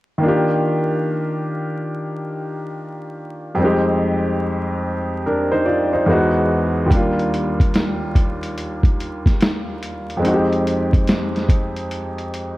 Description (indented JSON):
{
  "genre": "lo-fi hip hop",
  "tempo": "72 BPM",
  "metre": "4/4",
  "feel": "swing 65% on 16ths",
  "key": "Eb major",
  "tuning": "A4 = 441 Hz",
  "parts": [
    { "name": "clear upright piano", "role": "accompaniment", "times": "0.2-12.6 s", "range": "Eb2 to D5", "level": "-19 LUFS", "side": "equal", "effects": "cassette tape" },
    { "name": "lo-fi sampler-style drum kit", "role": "drums", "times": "6.9-12.6 s", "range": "hi-hat, kick drum, snare drum", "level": "-17 LUFS", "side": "equal", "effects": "none" }
  ],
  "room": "light reverb, digital ambience",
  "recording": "dark, warm production, vinyl crackle",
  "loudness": "-17 LUFS",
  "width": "side -18 dB against mid",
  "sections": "0.2-12.6 A section",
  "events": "break 11.9-12.6",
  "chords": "0.2 Ebmaj9; 3.6 Fm9; 6.1 Emaj9; 6.9 Ebmaj9; 10.2 Fm9"
}